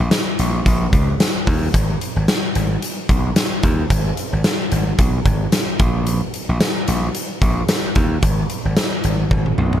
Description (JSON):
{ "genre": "1980s-style pop", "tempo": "111 BPM", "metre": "4/4", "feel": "swing 55% on 16ths", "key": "G# minor", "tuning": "A4 = 440 Hz", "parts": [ { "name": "gritty slap bass", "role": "bass", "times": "0.0-9.8 s", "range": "G#1 to D#2", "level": "-19 LUFS", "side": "equal", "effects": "overdrive" }, { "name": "huge arena drum kit", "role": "drums", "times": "0.1-9.8 s", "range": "hi-hat, kick drum, snare drum, tambourine, toms", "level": "-18 LUFS", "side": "equal", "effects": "none" } ], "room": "little or no reverb", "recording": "none", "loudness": "-16 LUFS", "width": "side -11 dB against mid", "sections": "0.0-9.8 A section", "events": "drum fill 9.3-9.8", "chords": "none" }